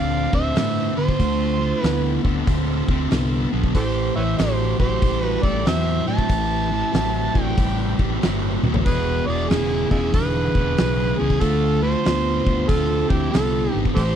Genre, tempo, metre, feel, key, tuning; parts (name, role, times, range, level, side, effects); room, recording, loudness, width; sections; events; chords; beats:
blues rock power trio and southern rock; 94 BPM; 4/4; swing 65% on 8ths; A4 = 436 Hz
overdriven harmonica; melody; 0.0-14.2 s; D#4 to A5; -24 LUFS; right 3 dB; slapback echo
nasal lead guitar with a parked wah; second line; 0.0-14.2 s; E4 to E5; -32 LUFS; right 2 dB; overdrive
overdriven tonewheel organ; sustained chords; 0.0-14.2 s; F3 to E5; -37 LUFS; right 7 dB
thick fuzz guitar; riff; 0.0-14.2 s; E2 to C4; -23 LUFS; left 1 dB; distortion
fretless electric bass; bass; 0.0-14.2 s; E1 to D3; -24 LUFS; equal; lush chorus
oversized low-tuned drum kit; drums; 0.3-14.2 s; hi-hat, kick drum, snare drum, toms; -24 LUFS; equal
little or no reverb; dry, close 1970s-style studio recording; -18 LUFS; side -9 dB against mid
0.0-14.2 A section
drum fill 8.5-8.9
0.0 Dm9; 3.8 Am9; 8.9 E7b9; 11.4 Dm9
0.56 | 1.20 1.84 2.48 3.12 | 3.75 4.39 5.03 5.67 | 6.31 6.95 7.58 8.22 | 8.86 9.50 10.14 10.78 | 11.42 12.06 12.70 13.33 | 13.97